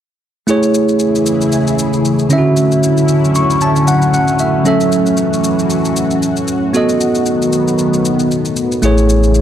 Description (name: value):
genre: amapiano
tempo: 115 BPM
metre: 4/4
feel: swing 58% on 16ths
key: A major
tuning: A4 = 438 Hz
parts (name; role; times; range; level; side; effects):
- bell-like tine electric piano; accompaniment; 0.5-9.4 s; D3 to C#6; -13 LUFS; right 2 dB; none
- lush unison pad; sustained chords; 0.5-9.4 s; C#3 to G#4; -17 LUFS; left 3 dB; chorus, phaser
- shaker; drums; 0.5-9.4 s; none; -25 LUFS; left 3 dB; none
- warm sub bass; bass; 8.8-9.4 s; A1; -11 LUFS; left 1 dB; none
room: moderate lush hall reverb, RT60 1.5 s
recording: dark, warm production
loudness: -11 LUFS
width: side -10 dB against mid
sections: 0.5-9.4 A section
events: tine electric piano fill 3.1-4.7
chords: 0.5 Amaj7; 2.3 Dmaj9; 4.7 F#m7; 6.7 B7; 8.8 Amaj7